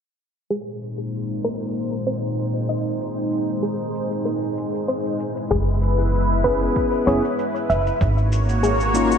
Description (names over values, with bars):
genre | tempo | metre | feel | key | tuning
sunset chillout | 96 BPM | 4/4 | swing 54% on 16ths | Bb minor | A4 = 440 Hz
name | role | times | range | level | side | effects
lush unison pad | sustained chords | 0.5-9.2 s | Bb2 to Db5 | -24 LUFS | equal | chorus, phaser, vintage 12-bit sampler grit
soft round pluck | arpeggios | 0.5-8.9 s | Ab4 to Fb5 | -26 LUFS | left 1 dB | chorus, cassette tape, ping-pong delay
shaker | drums | 0.5-9.2 s | none | -38 LUFS | left 3 dB | overdrive
upright bass | bass | 5.5-9.2 s | Gb1 to Ab1 | -21 LUFS | right 1 dB | none
electronic kick drum | drums | 5.5-8.1 s | none | -26 LUFS | equal | overdrive
mellow tine electric piano | accompaniment | 6.4-9.2 s | Bb3 to Ab4 | -23 LUFS | left 1 dB | auto-pan, ping-pong delay
room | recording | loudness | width
moderate lush hall reverb, RT60 2.0 s | bright 1980s-style digital production, low-pass filter | -20 LUFS | side -7 dB against mid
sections
0.5-9.2 A section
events
filter sweep on analog synth pad 0.5-9.2; filter sweep on synth arpeggio sound 0.5-9.2; filter sweep 0.5-9.2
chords
0.5 Bb9sus4; 5.2 Gb9sus4; 8.0 Ab9sus4